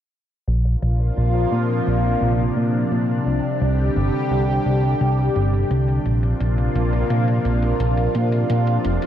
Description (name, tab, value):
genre	synthwave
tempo	86 BPM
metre	4/4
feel	straight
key	Bb major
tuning	A4 = 441 Hz
part	lush unison pad	sustained chords	0.8-9.1 s	C3 to G4	-21 LUFS	equal	chorus, phaser, shimmer reverb
part	fat analog bass	bass	0.5-9.0 s	F1 to Bb2	-19 LUFS	equal	none
part	electronic hi-hat	drums	0.5-9.1 s	none	-42 LUFS	left 2 dB	overdrive, low-pass filter on hats, studio reverb
room	light reverb, digital ambience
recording	none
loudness	-17 LUFS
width	side -10 dB against mid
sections	0.5-9.1 A section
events	filter sweep on drum 0.5-9.1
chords	0.5 Bbadd9; 3.3 Csus2; 6.1 Bbadd9